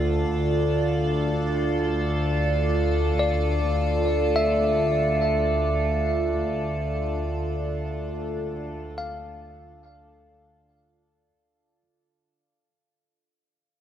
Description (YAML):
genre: ambient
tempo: free time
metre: none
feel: none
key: D minor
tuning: A4 = 439 Hz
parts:
  - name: evolving wavetable pad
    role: sustained chords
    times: 0.0-11.3 s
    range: D3 to D5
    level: -26 LUFS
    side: right 1 dB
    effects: chorus, built-in reverb, phaser
  - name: rich symphonic double bass section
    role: bass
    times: 0.0-11.2 s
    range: D2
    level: -26 LUFS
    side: left 1 dB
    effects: none
  - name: bell-like tine electric piano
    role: arpeggios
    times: 3.2-11.8 s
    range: D5 to F5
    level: -27 LUFS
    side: right 1 dB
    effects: diffuse ambient delay
room: wet cathedral reverb, RT60 5.3 s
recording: dark, warm production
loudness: -22 LUFS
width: side -10 dB against mid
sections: 0.0-11.3 A section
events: fade-out 5.1-11.3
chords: 0.0 Dmadd9